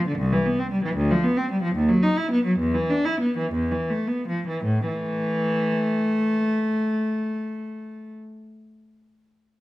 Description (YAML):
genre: classical, baroque-style suite movement for unaccompanied cello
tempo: 51-80 BPM (dotted quarters)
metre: 6/8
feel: rubato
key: A minor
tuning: A4 = 436 Hz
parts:
  - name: dark cello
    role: solo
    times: 0.0-8.1 s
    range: C2 to E4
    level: -21 LUFS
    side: equal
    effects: none
room: moderate recital hall reverb, RT60 1.6 s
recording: minimal, uncompressed stereo recording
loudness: -21 LUFS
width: side -17 dB against mid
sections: 0.0-4.7 A section; 4.7-9.2 B section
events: slowing down 0.2-4.7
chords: 0.2 Cmaj7; 1.0 Dm; 1.8 D#m; 2.6 E5; 4.7 A5